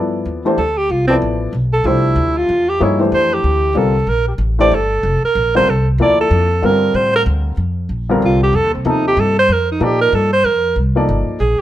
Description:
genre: modal jazz.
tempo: 188 BPM.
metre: 3/4.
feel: swing 62% on 8ths.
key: F mixolydian from 7.6 s.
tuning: A4 = 442 Hz.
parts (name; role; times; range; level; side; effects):
warm baby grand piano; accompaniment; 0.0-11.4 s; C3 to D5; -18 LUFS; left 2 dB; none.
upright bass; bass; 0.0-11.6 s; F1 to Bb2; -18 LUFS; equal; none.
breathy alto saxophone; melody; 0.6-11.6 s; C4 to D5; -15 LUFS; right 1 dB; plate reverb.
room: light reverb.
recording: none.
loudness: -13 LUFS.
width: side -13 dB against mid.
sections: 0.0-7.6 A section; 7.6-11.6 A section.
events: alto saxophone solo 0.0-11.6.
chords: 0.0 G13sus4; 3.8 C13sus4; 7.6 F9sus4.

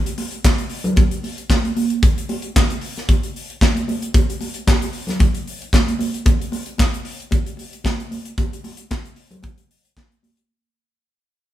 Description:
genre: disco.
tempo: 114 BPM.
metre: 4/4.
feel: straight.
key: none.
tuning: none.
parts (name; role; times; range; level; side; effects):
modern studio drum kit; drums; 0.1-10.5 s; handclaps, hi-hat, kick drum, snare drum; -18 LUFS; equal; none.
congas; percussion; 0.2-10.4 s; none; -25 LUFS; right 2 dB; none.
room: moderate stone room reverb, RT60 1.0 s.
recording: band playing live in one room.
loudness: -17 LUFS.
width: side -13 dB against mid.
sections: 0.0-6.3 A section; 6.3-10.5 B section.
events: fade-out 6.3-10.5.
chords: none.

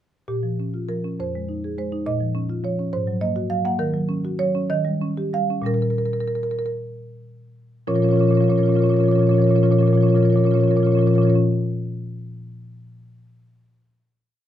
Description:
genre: classical, contemporary piece for solo marimba.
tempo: 51-70 BPM (dotted quarters).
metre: 6/8.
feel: rubato.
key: Bb minor.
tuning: A4 = 441 Hz.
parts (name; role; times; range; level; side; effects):
marimba with medium mallets; solo; 0.3-11.4 s; F2 to Gb5; -18 LUFS; equal; none.
room: little or no reverb.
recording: close, detailed microphones.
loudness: -18 LUFS.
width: side -11 dB against mid.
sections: 0.3-7.9 A section; 7.9-12.4 final chord.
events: slowing down 2.9-7.9.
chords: 0.3 Bbm6; 1.2 Fm7; 2.1 Bbm; 2.9 Absus2; 3.8 Ebm7; 4.7 Eb7; 5.7 Bbm6; 7.9 Bbm.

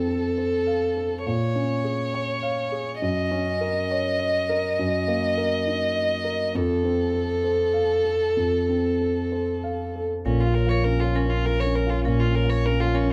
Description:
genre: neoclassical piano and strings.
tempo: 101 BPM.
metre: 3/4.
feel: rubato.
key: Bb minor.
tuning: A4 = 440 Hz.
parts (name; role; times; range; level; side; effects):
rich violin; melody; 0.0-13.1 s; Db4 to Eb5; -27 LUFS; equal; none.
warm grand piano; accompaniment; 0.0-13.1 s; F2 to F5; -28 LUFS; equal; none.
marimba with medium hard mallets; arpeggios; 10.3-13.0 s; Bb4 to F5; -34 LUFS; equal; tape echo.
sub bass with octave; bass; 10.3-13.1 s; Bb1; -27 LUFS; equal; none.
room: wet studio ambience, RT60 0.5 s.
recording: none.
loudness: -24 LUFS.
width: mono.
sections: 0.0-10.3 A section; 10.3-13.1 B section.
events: none.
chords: 0.0 F; 1.3 Bbm7; 3.0 Gb6; 4.8 Ebm/Gb; 6.6 F; 10.3 Bbm.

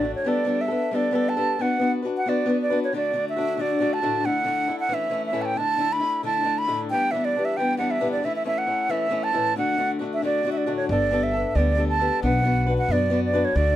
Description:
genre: celtic folk, Celtic hornpipe.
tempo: 180 BPM.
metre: 4/4.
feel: swing 62% on 8ths.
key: unclear.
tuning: A4 = 440 Hz.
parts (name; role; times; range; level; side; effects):
breathy wooden flute; melody; 0.0-13.8 s; C#5 to B5; -24 LUFS; right 2 dB; none.
fingerpicked swing-style acoustic guitar; accompaniment; 0.0-13.8 s; D2 to B4; -25 LUFS; left 2 dB; none.
upright bass; bass; 0.0-0.1, 10.9-13.8 s; G1 to F#2; -24 LUFS; equal; none.
room: little or no reverb.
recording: close, detailed microphones.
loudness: -21 LUFS.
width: side -13 dB against mid.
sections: 0.3-10.9 A section; 10.9-13.8 A section.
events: none.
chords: 0.3 Gadd9; 1.6 Bm; 2.9 D; 4.3 Asus4; 4.9 A; 5.6 Asus4; 6.9 G6; 8.2 A; 9.6 D; 10.9 Gadd9; 12.2 Bm.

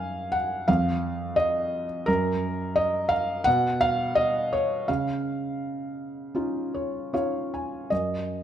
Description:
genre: classical, lyrical solo piano.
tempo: 74-89 BPM.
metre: 4/4.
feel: rubato.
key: unclear.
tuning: A4 = 438 Hz.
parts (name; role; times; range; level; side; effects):
felt-muted upright piano; solo; 0.0-8.4 s; E#2 to G#5; -24 LUFS; equal; none.
room: moderate recital hall reverb, RT60 1.4 s.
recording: none.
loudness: -24 LUFS.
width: side -10 dB against mid.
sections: 0.0-7.9 A section.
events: felt piano fill 6.4-7.9.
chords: 0.0 N.C.; 4.9 C#add9; 7.9 N.C..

